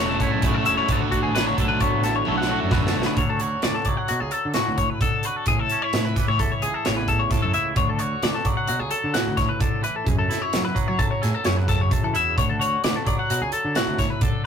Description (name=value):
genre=math rock and midwest emo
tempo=130 BPM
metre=5/4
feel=straight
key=unclear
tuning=A4 = 441 Hz
part: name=twangy electric guitar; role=accompaniment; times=0.0-14.5 s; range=E2 to A4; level=-29 LUFS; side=right 5 dB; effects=none
part: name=twelve-string electric guitar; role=arpeggios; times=0.0-14.4 s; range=F#4 to F#5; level=-25 LUFS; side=left 5 dB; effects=none
part: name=crunchy overdriven guitar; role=riff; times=0.0-3.2 s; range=D3 to A4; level=-25 LUFS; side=equal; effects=none
part: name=growling fingered electric bass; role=bass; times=0.0-14.1 s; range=E1 to F#3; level=-28 LUFS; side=right 1 dB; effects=overdrive
part: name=modern studio drum kit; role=drums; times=0.2-14.3 s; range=hi-hat, kick drum, snare drum, toms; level=-24 LUFS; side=equal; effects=none
room=moderate booth ambience, RT60 0.2 s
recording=rough rehearsal-room recording, tube saturation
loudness=-20 LUFS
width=side -7 dB against mid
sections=0.0-3.2 A section; 3.2-14.5 B section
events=drum fill 2.3-3.2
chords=0.0 F#m7; 0.9 D6; 3.2 Dmaj7; 5.5 Amaj7; 7.8 Dmaj7; 10.1 F#m7; 12.4 Dmaj7